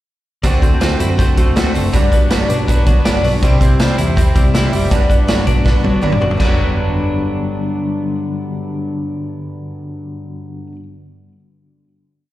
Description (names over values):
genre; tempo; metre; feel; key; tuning
jangly indie pop; 161 BPM; 4/4; straight; G major; A4 = 440 Hz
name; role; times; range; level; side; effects
fingerpicked twelve-string acoustic guitar; accompaniment; 0.4-10.8 s; G2 to F#4; -21 LUFS; right 3 dB; slapback echo
twelve-string electric guitar; arpeggios; 0.4-10.8 s; G2 to F#4; -21 LUFS; left 4 dB; harmonic tremolo, digital delay, slapback echo
vintage muted fingered electric bass; bass; 0.4-10.7 s; F#1 to F#2; -19 LUFS; equal; none
vintage drum kit; drums; 0.4-6.5 s; china cymbal, hi-hat, kick drum, snare drum, toms; -15 LUFS; equal; none
room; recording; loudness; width
little or no reverb; live gig heard through the venue's PA, recital hall reverb; -13 LUFS; side -15 dB against mid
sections
0.4-6.4 verse; 6.4-9.4 final chord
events
drum fill 5.7-6.4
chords
0.4 D7; 1.9 Gmaj7; 3.4 C; 4.9 Gmaj7